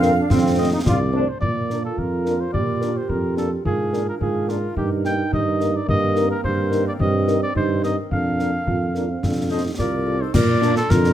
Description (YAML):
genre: military-style march for wind band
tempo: 108 BPM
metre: 2/4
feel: straight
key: Bb major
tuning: A4 = 440 Hz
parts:
  - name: mellow cornet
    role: melody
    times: 0.0-11.1 s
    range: F4 to G5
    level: -26 LUFS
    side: equal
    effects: none
  - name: mellow woodwind section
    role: second line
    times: 0.0-11.1 s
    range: C4 to F5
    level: -31 LUFS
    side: left 3 dB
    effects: none
  - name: warm euphonium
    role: second line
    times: 0.0-11.1 s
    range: Bb3 to G4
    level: -27 LUFS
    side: right 4 dB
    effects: none
  - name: mellow French horn section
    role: accompaniment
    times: 0.0-10.7 s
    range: A3 to C5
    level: -26 LUFS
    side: left 3 dB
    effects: none
  - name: bright trombone section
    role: sustained chords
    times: 0.0-1.3, 10.6-10.7 s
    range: Bb3 to F4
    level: -24 LUFS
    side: right 3 dB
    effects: none
  - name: warm tuba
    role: bass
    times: 0.0-11.1 s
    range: C2 to Bb2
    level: -22 LUFS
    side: right 1 dB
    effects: none
  - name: concert snare drum, concert bass drum and clash cymbals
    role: drums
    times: 0.0-11.1 s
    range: none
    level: -24 LUFS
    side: left 1 dB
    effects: none
room: light reverb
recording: close, detailed microphones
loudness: -18 LUFS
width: side -11 dB against mid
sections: 0.0-1.4 A section; 1.4-10.3 B section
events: none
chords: 0.3 F; 1.4 Bb; 3.6 Bb7/Ab; 4.8 Eb/G; 5.9 Cm7/G; 8.1 Bb/F; 9.2 F; 10.3 Bb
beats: | 0.30 0.86 | 1.42 1.98 | 2.53 3.09 | 3.65 4.21 | 4.76 5.32 | 5.88 6.44 | 7.00 7.55 | 8.11 8.67 | 9.23 9.79 | 10.34 10.90